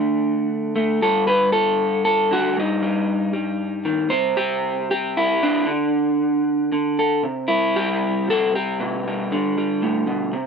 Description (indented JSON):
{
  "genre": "folk, solo fingerstyle acoustic guitar",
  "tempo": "116 BPM",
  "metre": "3/4",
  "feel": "straight",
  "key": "G major",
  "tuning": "A4 = 442 Hz",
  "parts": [
    { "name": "electric guitar through a small old amp", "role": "solo", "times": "0.0-10.5 s", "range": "G2 to C5", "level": "-18 LUFS", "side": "equal", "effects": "none" }
  ],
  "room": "light reverb",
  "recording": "close, detailed microphones",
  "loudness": "-18 LUFS",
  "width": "side -6 dB against mid",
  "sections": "0.0-7.2 A section; 7.2-10.5 B section",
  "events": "none",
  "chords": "0.0 D5; 1.0 Gsus2; 2.6 Eb/G; 4.1 C; 5.7 N.C.; 6.7 D5; 7.2 C; 8.8 G/B",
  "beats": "0.51 | 1.03 1.55 2.07 | 2.58 3.09 3.60 | 4.12 4.63 5.15 | 5.67 6.19 6.72 | 7.25 7.77 8.29 | 8.81 9.32 9.83 | 10.35"
}